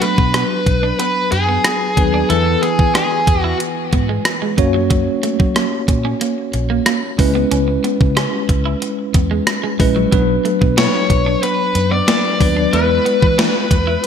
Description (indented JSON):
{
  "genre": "1980s-style pop",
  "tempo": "92 BPM",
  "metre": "4/4",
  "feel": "straight",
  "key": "B dorian",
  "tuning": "A4 = 441 Hz",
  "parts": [
    { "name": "high-gain lead guitar", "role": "melody", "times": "0.0-3.6, 10.8-14.1 s", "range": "G#4 to D5", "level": "-18 LUFS", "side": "left 1 dB", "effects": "distortion, ping-pong delay" },
    { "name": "bell-like tine electric piano", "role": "accompaniment", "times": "0.0-14.1 s", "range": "E3 to C#5", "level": "-19 LUFS", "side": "left 1 dB", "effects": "medium stereo tremolo" },
    { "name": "electric guitar at the edge of break-up", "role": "riff", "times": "0.0-14.1 s", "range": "F#3 to E4", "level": "-24 LUFS", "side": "right 7 dB", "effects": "lush chorus, ping-pong delay" },
    { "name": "gated 80s digital drum machine", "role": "drums", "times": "0.0-14.1 s", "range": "hi-hat, kick drum, rim click, snare drum", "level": "-17 LUFS", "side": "equal", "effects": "gated reverb, gated reverb snare, overdrive" },
    { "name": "vintage muted fingered electric bass", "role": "bass", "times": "0.2-14.0 s", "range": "A#1 to F#3", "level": "-20 LUFS", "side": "equal", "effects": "none" }
  ],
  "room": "moderate plate reverb, RT60 2.5 s",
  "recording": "bright 1980s-style digital production",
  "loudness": "-13 LUFS",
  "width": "side -7 dB against mid",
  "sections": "0.0-14.1 A section",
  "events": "none",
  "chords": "0.0 Bm; 2.3 E; 4.6 F#; 7.2 C#m7; 10.1 Bm; 12.7 E"
}